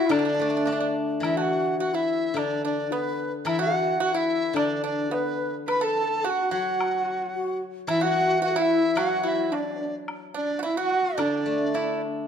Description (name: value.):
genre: chinese traditional, Chinese chamber ensemble.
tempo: 109 BPM.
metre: 2/4.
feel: rubato.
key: D gong mode.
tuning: A4 = 440 Hz.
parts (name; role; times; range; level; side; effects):
bright reedy large dizi; melody; 0.0-12.0 s; B4 to B5; -28 LUFS; left 1 dB; none.
dark horsehead fiddle; second line; 0.0-0.9, 5.7-12.0 s; D4 to B4; -29 LUFS; right 4 dB; none.
mellow xiao; second line; 0.0-9.9 s; D4 to E5; -29 LUFS; left 5 dB; none.
pipa; second line; 0.0-12.0 s; B3 to B4; -31 LUFS; right 7 dB; none.
steel-string zither; accompaniment; 0.1-12.3 s; D3 to D4; -29 LUFS; left 2 dB; none.
woodblock; percussion; 0.1-11.9 s; none; -37 LUFS; left 3 dB; none.
room: moderate recital hall reverb, RT60 1.6 s.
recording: dark, warm production.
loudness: -23 LUFS.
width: side -8 dB against mid.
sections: 0.0-1.2 A section; 1.2-10.1 B section; 10.1-12.3 C section.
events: none.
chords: none.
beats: | 0.11 0.67 | 1.22 1.79 | 2.35 2.91 | 3.46 4.01 | 4.56 5.11 | 5.68 6.25 | 6.80 7.35 | 7.89 8.43 | 8.98 9.53 | 10.09 10.65 | 11.20 11.75.